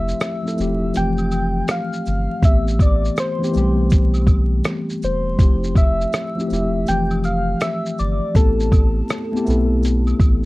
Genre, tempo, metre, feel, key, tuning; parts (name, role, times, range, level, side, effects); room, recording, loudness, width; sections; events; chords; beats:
lo-fi hip hop; 81 BPM; 4/4; swing 64% on 16ths; A minor; A4 = 440 Hz
soft struck synth lead; melody; 0.0-10.5 s; A4 to G5; -25 LUFS; left 1 dB; chorus, low-pass filter
mellow tine electric piano; accompaniment; 0.0-10.5 s; E3 to A4; -22 LUFS; left 1 dB; medium stereo tremolo, low-pass filter
soft dub sub bass; bass; 0.0-10.5 s; E1 to B1; -21 LUFS; equal
lo-fi sampler-style drum kit; drums; 0.1-10.4 s; hi-hat, kick drum, rim click, shaker; -16 LUFS; equal
maracas and woodblock; percussion; 0.2-10.4 s; -42 LUFS; right 3 dB
light reverb; dark, warm production, vinyl crackle; -16 LUFS; side -20 dB against mid
0.0-10.5 A section
0.0 Fmaj9; 2.4 Am9; 5.4 Fmaj9; 6.9 Fmaj13; 8.4 Am9
0.20 0.94 1.69 | 2.43 3.17 3.91 4.65 | 5.39 6.13 6.87 7.61 | 8.35 9.09 9.83